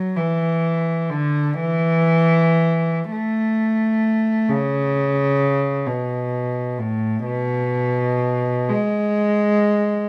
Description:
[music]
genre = classical, free, expressive piece for unaccompanied cello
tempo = 37-45 BPM (dotted quarters)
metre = 6/8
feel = rubato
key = A major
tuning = A4 = 440 Hz
[part]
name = warm cello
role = solo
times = 0.0-10.1 s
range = A2 to A3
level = -20 LUFS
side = equal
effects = none
[sound]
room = light reverb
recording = none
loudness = -20 LUFS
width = mono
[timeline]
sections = 0.0-10.1 A section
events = none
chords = none

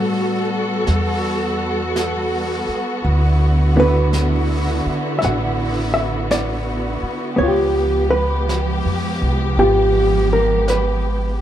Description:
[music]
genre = jazz ballad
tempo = 55 BPM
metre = 4/4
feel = swing 66% on 8ths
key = unclear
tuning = A4 = 440 Hz
[part]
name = hollow-body jazz guitar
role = accompaniment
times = 0.0-11.4 s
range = D3 to F#5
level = -19 LUFS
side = equal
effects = none
[part]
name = warm studio string section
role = sustained chords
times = 0.0-11.4 s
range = D3 to A4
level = -22 LUFS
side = right 1 dB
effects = none
[part]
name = upright bass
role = bass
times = 0.0-11.4 s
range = G#1 to A2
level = -20 LUFS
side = equal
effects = none
[part]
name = jazz brush drum kit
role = drums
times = 0.9-11.4 s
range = brushed snare drum, hi-hat, snare drum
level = -32 LUFS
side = right 2 dB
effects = none
[sound]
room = light reverb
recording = dark, warm production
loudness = -16 LUFS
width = side -11 dB against mid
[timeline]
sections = 0.0-11.4 A section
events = none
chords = 0.0 A13; 3.0 D69; 7.4 C#7#11

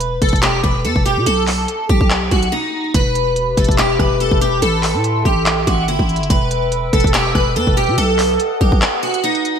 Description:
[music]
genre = hip hop, trap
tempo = 143 BPM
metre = 4/4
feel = half-time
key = E harmonic minor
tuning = A4 = 440 Hz
[part]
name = picked steel-string acoustic guitar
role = melody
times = 0.0-9.6 s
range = D#4 to B4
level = -18 LUFS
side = right 1 dB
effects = analog chorus
[part]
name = growling 808-style bass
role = bass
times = 0.0-8.8 s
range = E1 to B2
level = -19 LUFS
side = equal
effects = none
[part]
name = trap drum kit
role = drums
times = 0.0-9.6 s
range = handclaps, hi-hat, kick drum, rim click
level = -17 LUFS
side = equal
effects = gated reverb
[part]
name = warbly tape-like pad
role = sustained chords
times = 3.2-9.6 s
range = G4 to E6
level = -23 LUFS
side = left 2 dB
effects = chorus, built-in reverb, phaser
[sound]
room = moderate lush hall reverb, RT60 1.9 s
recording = bright 1980s-style digital production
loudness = -13 LUFS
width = side -7 dB against mid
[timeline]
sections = 0.0-2.9 A section; 2.9-9.6 B section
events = break 2.5-2.9, 8.8-9.6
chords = 0.0 E5; 1.3 B; 2.9 Em; 4.6 Am7; 6.3 Em; 8.0 B

